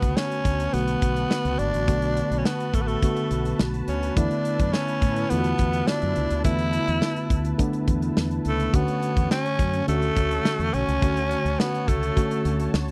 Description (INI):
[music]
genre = 1980s-style pop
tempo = 105 BPM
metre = 4/4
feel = straight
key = unclear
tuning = A4 = 440 Hz
[part]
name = growling tenor saxophone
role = melody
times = 0.0-12.8 s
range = A3 to E4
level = -29 LUFS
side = equal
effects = slapback echo
[part]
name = mellow tine electric piano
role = accompaniment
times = 0.0-12.9 s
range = D3 to F#4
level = -29 LUFS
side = equal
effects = none
[part]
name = brassy analog pad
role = sustained chords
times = 0.0-12.9 s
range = E4 to A5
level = -39 LUFS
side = equal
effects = chorus
[part]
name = mellow fretless electric bass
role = bass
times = 0.0-12.9 s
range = G#1 to A2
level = -30 LUFS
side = equal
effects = none
[part]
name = modern studio drum kit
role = drums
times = 0.0-12.9 s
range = hi-hat, kick drum, snare drum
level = -27 LUFS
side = equal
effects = none
[sound]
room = little or no reverb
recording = dry, close 1970s-style studio recording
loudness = -24 LUFS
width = mono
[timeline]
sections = 0.0-12.9 A section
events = none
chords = 0.0 Bm7; 4.2 E7sus4; 8.7 Dmaj7